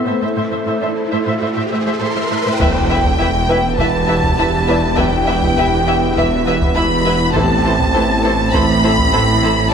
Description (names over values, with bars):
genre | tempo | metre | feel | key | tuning
cinematic, hybrid orchestral and electronic film score | 101 BPM | 4/4 | straight | A minor | A4 = 440 Hz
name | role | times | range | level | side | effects
dark French horn section | sustained chords | 0.0-2.0 s | A3 to B3 | -24 LUFS | left 3 dB | none
ethereal airy pad | sustained chords | 0.0-9.7 s | A3 to C5 | -22 LUFS | left 1 dB | ensemble chorus, built-in reverb, tremolo
riser and sub drop | sound effects | 0.3-5.0 s | none | -25 LUFS | left 1 dB | none
felt-muted upright piano | texture | 0.0-9.7 s | E4 to E5 | -31 LUFS | left 1 dB | none
warm symphonic viola section | accompaniment | 0.1-9.5 s | E3 to E5 | -24 LUFS | right 1 dB | none
rich symphonic cello section | bass | 0.1-9.7 s | E2 to A2 | -22 LUFS | right 2 dB | none
warm symphonic violin section | melody | 2.0-9.7 s | E5 to C6 | -18 LUFS | left 1 dB | none
warm symphonic violin section | second line | 2.6-9.7 s | A4 to E5 | -22 LUFS | left 1 dB | none
clear trombone section | sustained chords | 2.6-9.7 s | E3 to C4 | -24 LUFS | right 4 dB | none
detuned saw bass | bass | 2.6-9.7 s | E1 to A1 | -22 LUFS | equal | none
rich symphonic double bass section | bass | 2.6-9.7 s | E1 to A1 | -24 LUFS | right 4 dB | none
taiko ensemble | drums | 2.6-9.5 s | none | -22 LUFS | equal | none
room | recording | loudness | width
moderate scoring stage reverb, RT60 1.6 s | none | -13 LUFS | side -7 dB against mid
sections
0.0-2.6 A section; 2.6-9.7 B section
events
riser 0.3-2.6; impact 2.6-5.0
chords
0.0 Am; 2.6 Em; 7.4 Am